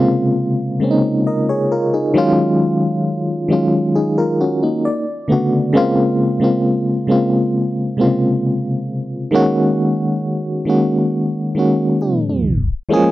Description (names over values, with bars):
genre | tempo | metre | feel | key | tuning
R&B | 67 BPM | 4/4 | straight | unclear | A4 = 440 Hz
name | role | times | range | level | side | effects
FM electric piano with tremolo | solo | 0.0-13.1 s | C3 to Eb5 | -14 LUFS | equal | none
room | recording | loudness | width
light reverb | dry, gritty hardware recording, tape stop | -14 LUFS | side -16 dB against mid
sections
0.0-12.9 A section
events
FM electric piano fill 4.4-5.7; tape stop 12.0-12.9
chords
0.0 Bbm9; 2.2 Ebm11; 4.8 Bm9; 5.7 Bbm9; 9.3 Ab9sus4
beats
0.37 1.26 | 2.16 3.05 3.95 4.84 | 5.74 6.64 7.53 8.43 | 9.32 10.22 11.11 12.01 | 12.90